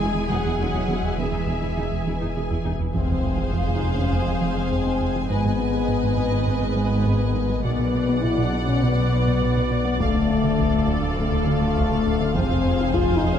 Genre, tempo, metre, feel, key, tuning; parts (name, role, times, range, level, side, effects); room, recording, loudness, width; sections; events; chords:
cinematic, hybrid orchestral and electronic film score; 102 BPM; 4/4; straight; A4 = 440 Hz
warm symphonic violin section; melody; 0.0-2.7 s; G#5; -35 LUFS; left 2 dB
warm symphonic violin section; second line; 0.0-13.4 s; D5 to G#5; -32 LUFS; left 3 dB
warm symphonic viola section; accompaniment; 0.0-13.4 s; B3 to D5; -32 LUFS; right 2 dB
deep dark ambient pad; sustained chords; 0.0-13.4 s; Eb3 to F5; -32 LUFS; right 1 dB; chorus, built-in reverb
mellow French horn section; sustained chords; 0.0-13.4 s; E3 to F4; -25 LUFS; left 7 dB
plucky analog bass; riff; 0.0-13.3 s; D2 to B3; -27 LUFS; right 2 dB
dark symphonic cello section; bass; 0.0-13.4 s; D2 to G#3; -30 LUFS; right 2 dB
detuned saw bass; bass; 0.0-13.4 s; D1 to B1; -29 LUFS; equal
mellow tuba; bass; 0.0-2.7 s; E1; -35 LUFS; right 4 dB
rich symphonic double bass section; bass; 0.0-13.4 s; F1 to E2; -29 LUFS; right 4 dB
taiko ensemble; drums; 2.9-4.1, 7.7-13.4 s; -30 LUFS; equal
sub drop; sound effects; 2.9-5.3 s; -31 LUFS; equal
moderate scoring stage reverb, RT60 1.9 s; -20 LUFS; side -9 dB against mid
0.0-2.9 A section; 2.9-13.4 B section
impact 2.9-5.3
0.0 E; 2.9 Fm; 5.3 Abm; 7.7 Bm; 10.0 Dm; 12.4 Fm